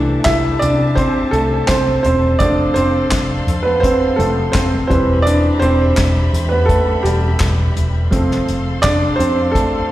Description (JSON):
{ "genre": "piano-driven pop", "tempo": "84 BPM", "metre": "4/4", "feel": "straight", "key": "unclear", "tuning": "A4 = 442 Hz", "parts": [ { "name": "clear upright piano", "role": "accompaniment", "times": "0.0-9.9 s", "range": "E3 to E5", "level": "-15 LUFS", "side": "right 1 dB", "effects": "slapback echo" }, { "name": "warm studio string section", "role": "sustained chords", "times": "0.0-9.9 s", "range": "G4 to C6", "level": "-28 LUFS", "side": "left 3 dB", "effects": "none" }, { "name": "vintage muted fingered electric bass", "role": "bass", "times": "0.0-9.6 s", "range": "E1 to C3", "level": "-18 LUFS", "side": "equal", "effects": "none" }, { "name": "unplugged drum kit", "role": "drums", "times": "0.2-9.7 s", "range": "handclaps, hi-hat, kick drum, snare drum, toms", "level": "-20 LUFS", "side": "equal", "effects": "none" } ], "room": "light reverb, studio reverb", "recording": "live gig heard through the venue's PA, recital hall reverb", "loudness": "-13 LUFS", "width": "side -14 dB against mid", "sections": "0.0-9.9 A section", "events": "upright piano solo 0.0-9.9", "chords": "0.0 C6; 2.4 F; 4.9 Em; 8.1 F" }